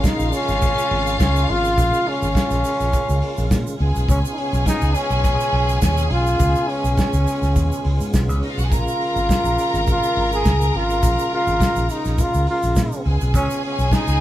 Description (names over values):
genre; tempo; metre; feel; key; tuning
disco; 104 BPM; 4/4; straight; unclear; A4 = 440 Hz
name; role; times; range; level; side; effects
breathy trombone; melody; 0.0-14.2 s; Db4 to Ab4; -22 LUFS; equal; none
rich studio string section; second line; 0.0-14.2 s; Cb4 to Bb5; -26 LUFS; equal; none
tonewheel organ; sustained chords; 0.0-14.2 s; Db3 to F4; -29 LUFS; right 1 dB; chorus vibrato, slow rotary speaker
fingered electric bass; bass; 0.0-14.2 s; Ab1 to Bb2; -21 LUFS; equal; none
warm soul drum kit; drums; 0.0-14.1 s; hi-hat, kick drum, snare drum; -21 LUFS; equal; none
egg shaker; percussion; 0.0-14.2 s; none; -38 LUFS; right 6 dB; none
room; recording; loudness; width
moderate stone room reverb, RT60 1.2 s; band playing live in one room; -17 LUFS; side -13 dB against mid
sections
0.0-14.2 A section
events
none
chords
0.0 Bbm7; 3.8 Db7; 8.7 Bbm7; 13.1 Db7